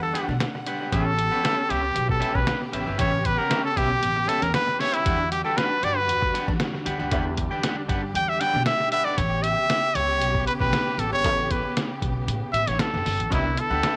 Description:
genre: funk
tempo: 116 BPM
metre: 4/4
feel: straight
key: unclear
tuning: A4 = 440 Hz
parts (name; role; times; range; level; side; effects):
- bright trumpet; melody; 0.0-14.0 s; E4 to G5; -26 LUFS; equal; none
- electric guitar at the edge of break-up; accompaniment; 0.0-9.2, 13.3-14.0 s; C#4 to G5; -33 LUFS; equal; none
- warm symphonic string section; sustained chords; 0.0-14.0 s; C#3 to F#5; -36 LUFS; equal; none
- upright bass; bass; 0.0-13.9 s; F#1 to B2; -32 LUFS; equal; none
- lo-fi sampler-style drum kit; drums; 0.2-14.0 s; hi-hat, kick drum, snare drum; -30 LUFS; equal; none
room: light reverb, studio ambience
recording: none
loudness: -24 LUFS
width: mono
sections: 0.0-13.3 A section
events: trumpet solo 0.0-13.3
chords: 0.0 Em9; 0.9 A9; 5.1 Em9; 9.2 A9; 13.3 Cmaj9

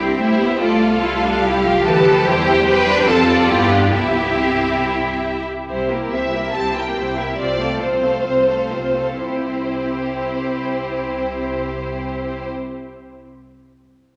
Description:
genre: quick classical-period movement for string orchestra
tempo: 124-148 BPM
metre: 4/4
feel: rubato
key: C major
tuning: A4 = 440 Hz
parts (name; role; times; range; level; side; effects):
- warm symphonic violin section; melody; 0.0-12.5 s; E4 to A5; -26 LUFS; equal; none
- clear symphonic violin section; second line; 0.0-12.5 s; E4 to A5; -24 LUFS; equal; none
- warm symphonic viola section; accompaniment; 0.0-12.5 s; A3 to C5; -24 LUFS; equal; none
- clear symphonic double bass section; bass; 0.0-12.5 s; C2 to G2; -30 LUFS; equal; none
- rich studio cello section; bass; 0.0-12.5 s; C2 to D4; -26 LUFS; equal; none
room: wet concert hall reverb, RT60 2.3 s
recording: none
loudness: -18 LUFS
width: mono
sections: 0.0-5.7 A section; 5.7-9.2 B section; 9.2-12.9 C section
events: slowing down 4.8-9.2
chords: 0.0 C; 0.6 G7/C; 2.3 C/E; 3.1 F; 3.5 G7; 3.9 C; 5.7 C7; 7.4 F/C; 9.2 C

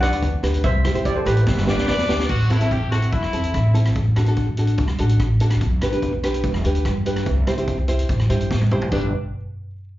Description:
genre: calypso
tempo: 145 BPM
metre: 4/4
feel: straight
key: G major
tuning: A4 = 440 Hz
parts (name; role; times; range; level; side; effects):
- steel pan; melody; 0.0-2.0 s; G4 to F#5; -25 LUFS; right 1 dB; slapback echo
- nylon-string guitar; accompaniment; 0.0-9.1 s; C4 to C5; -25 LUFS; right 1 dB; slapback echo
- upright bass; bass; 0.0-9.1 s; E1 to C3; -20 LUFS; equal; none
- street-band drum kit; drums; 0.0-9.0 s; crash cymbal, hi-hat, kick drum, rim click, snare drum, toms; -25 LUFS; equal; none
- clear horn section; second line; 1.7-3.9, 8.9-9.1 s; D4 to D5; -26 LUFS; left 2 dB; slapback echo
room: little or no reverb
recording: live gig heard through the venue's PA, club reverb, nothing above 7.5 kHz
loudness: -18 LUFS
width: side -15 dB against mid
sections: 0.0-2.3 A section; 2.3-8.9 B section; 8.9-10.0 C section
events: drum fill 1.5-2.3, 8.5-8.9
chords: 0.0 G; 0.6 C; 1.5 G; 2.3 Am; 4.0 D/A; 5.6 G/B; 7.3 C; 8.9 G

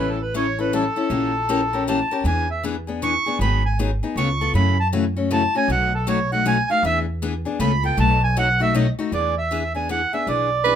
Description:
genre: acoustic string swing (jazz manouche)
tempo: 157 BPM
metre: 3/4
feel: swing 63% on 8ths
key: E mixolydian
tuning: A4 = 440 Hz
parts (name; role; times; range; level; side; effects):
- accordion; melody; 0.0-10.8 s; A4 to C#6; -22 LUFS; right 2 dB; none
- picked steel-string acoustic guitar; accompaniment; 0.0-10.8 s; B2 to A#4; -24 LUFS; left 5 dB; none
- upright bass; bass; 0.0-10.8 s; G#1 to F#2; -23 LUFS; equal; none
- bright soprano saxophone; second line; 10.6-10.8 s; B4; -16 LUFS; right 7 dB; none
room: light reverb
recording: minimal, uncompressed stereo recording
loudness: -18 LUFS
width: side -9 dB against mid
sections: 0.0-9.1 A section; 9.1-10.8 B section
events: accordion solo 0.0-9.1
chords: 0.0 A7; 1.1 A#dim7; 2.2 E7; 3.4 G#m7; 4.2 C#aug7; 4.5 F#m7; 5.7 B7; 6.8 E7; 7.6 C#aug7; 8.0 B7; 9.1 E7

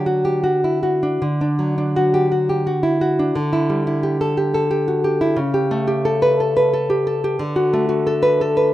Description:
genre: romantic piece for solo classical guitar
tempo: 87 BPM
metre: 3/4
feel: uneven beats, rubato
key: D major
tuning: A4 = 442 Hz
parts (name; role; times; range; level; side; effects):
- nylon-string guitar; solo; 0.0-8.7 s; C#3 to B4; -16 LUFS; equal; none
room: light reverb, small room reverb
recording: rough home demo mix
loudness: -16 LUFS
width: side -14 dB against mid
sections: 0.0-1.2 A section; 1.2-8.7 A section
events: none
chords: 0.0 D; 3.4 Em7/D; 5.4 A7/C#; 7.4 D

